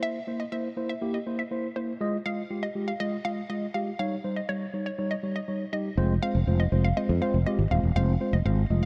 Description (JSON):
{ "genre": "dance-pop", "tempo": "121 BPM", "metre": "4/4", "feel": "straight", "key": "F minor", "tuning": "A4 = 438 Hz", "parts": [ { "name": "hollow square pluck", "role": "melody", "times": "0.0-8.9 s", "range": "C5 to F5", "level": "-37 LUFS", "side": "equal", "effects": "chorus, phaser" }, { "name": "mellow tine electric piano", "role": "accompaniment", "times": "0.0-8.9 s", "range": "G3 to Eb5", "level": "-32 LUFS", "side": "equal", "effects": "analog chorus" }, { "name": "fretless electric bass", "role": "bass", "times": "6.0-8.9 s", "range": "Eb1 to F2", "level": "-26 LUFS", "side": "equal", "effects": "none" } ], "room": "light reverb, digital ambience", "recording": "dark, warm production", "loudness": "-28 LUFS", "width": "mono", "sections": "0.0-6.0 A section; 6.0-8.9 B section", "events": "none", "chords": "0.0 C7; 2.0 Fm7; 4.0 Eb7; 6.0 Fm" }